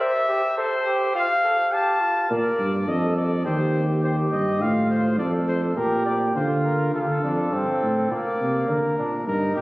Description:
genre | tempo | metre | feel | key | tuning
classical, imitative canzona for brass ensemble | 104 BPM | 4/4 | straight | Bb major | A4 = 439 Hz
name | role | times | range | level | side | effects
warm cornet | melody | 0.0-9.6 s | G4 to A5 | -25 LUFS | left 1 dB | none
dark trumpet | second line | 0.0-9.6 s | Bb3 to C5 | -26 LUFS | right 1 dB | none
mellow tuba | bass | 2.3-9.6 s | Eb2 to D3 | -23 LUFS | equal | none
room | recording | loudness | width
wet church reverb, RT60 3.1 s | recorded on a phone in the room, club reverb, compression | -20 LUFS | side -20 dB against mid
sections
0.0-6.9 A section; 6.9-9.6 B section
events
none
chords
0.0 C; 1.2 F; 2.3 Bb; 3.5 Cm/Eb; 4.6 F/A; 5.8 Bb; 6.9 Dm; 8.1 Bb

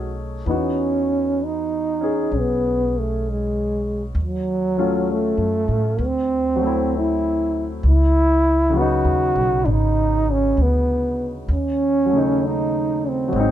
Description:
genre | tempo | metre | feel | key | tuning
jazz ballad | 65 BPM | 4/4 | swing 67% on 8ths | unclear | A4 = 440 Hz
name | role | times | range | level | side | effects
breathy trombone | melody | 0.0-13.5 s | F#3 to F#4 | -20 LUFS | right 1 dB | none
clear grand piano | accompaniment | 0.0-13.5 s | C#3 to G#4 | -25 LUFS | left 3 dB | none
upright bass | bass | 0.0-13.5 s | G#1 to A2 | -23 LUFS | equal | none
room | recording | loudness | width
light reverb | band playing live in one room | -18 LUFS | side -11 dB against mid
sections
0.0-13.5 A section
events
none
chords
0.5 Emaj7; 4.2 D#m7b5; 6.0 D9; 7.8 C#m11; 11.5 D#m7b5

